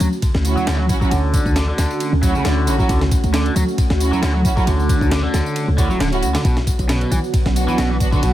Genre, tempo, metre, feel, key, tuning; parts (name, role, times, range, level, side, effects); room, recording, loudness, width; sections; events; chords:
breakbeat, breaks; 135 BPM; 4/4; swing 54% on 16ths; A4 = 440 Hz
phased analog pad; sustained chords; 0.0-8.3 s; D3 to F#4; -25 LUFS; right 1 dB; phaser, chorus, sidechain pumping
cranked stack guitar; riff; 0.0-8.3 s; B2 to F#3; -23 LUFS; left 1 dB; overdrive, phaser, low-pass filter, ping-pong delay
warm 808-style bass; bass; 0.0-8.3 s; D1 to D2; -20 LUFS; equal; tube saturation
breakbeat sampler-style drum kit; drums; 0.0-8.3 s; kick drum, ride cymbal, snare drum; -20 LUFS; equal; small room ambience
tambourine; drums; 0.0-8.3 s; -33 LUFS; left 4 dB; small room ambience
muted studio string section; stabs; 0.4-8.2 s; B3 to F#4; -24 LUFS; right 4 dB; ping-pong delay
light reverb; -15 LUFS; side -13 dB against mid
0.0-8.3 A section
filter sweep on overdriven electric guitar 0.0-8.3
0.0 Dmaj7; 6.5 Bm